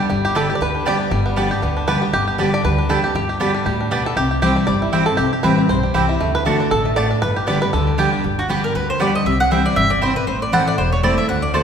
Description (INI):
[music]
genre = bluegrass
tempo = 236 BPM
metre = 4/4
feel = swing 56% on 8ths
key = G major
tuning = A4 = 440 Hz
[part]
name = bluegrass banjo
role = melody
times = 0.0-8.2 s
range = G3 to D5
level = -21 LUFS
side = right 1 dB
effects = none
[part]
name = picked steel-string acoustic guitar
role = accompaniment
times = 0.0-11.6 s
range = E2 to G4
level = -20 LUFS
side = left 1 dB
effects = none
[part]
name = upright bass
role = bass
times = 0.1-11.6 s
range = E1 to D2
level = -24 LUFS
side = equal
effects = none
[part]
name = mandolin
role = stabs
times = 0.3-11.6 s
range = A3 to A5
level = -23 LUFS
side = right 3 dB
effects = none
[part]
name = mandolin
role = melody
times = 8.4-11.6 s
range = F#4 to F#5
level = -19 LUFS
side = equal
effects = none
[sound]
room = wet recital hall reverb, RT60 1.6 s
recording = recorded in a church or concert hall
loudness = -16 LUFS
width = side -7 dB against mid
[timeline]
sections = 0.1-8.2 A section; 8.2-11.6 A section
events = five-string banjo solo 0.0-8.2; mandolin solo 8.2-11.6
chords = 0.1 G; 4.2 C; 6.2 D; 7.2 G; 9.3 C; 10.3 Am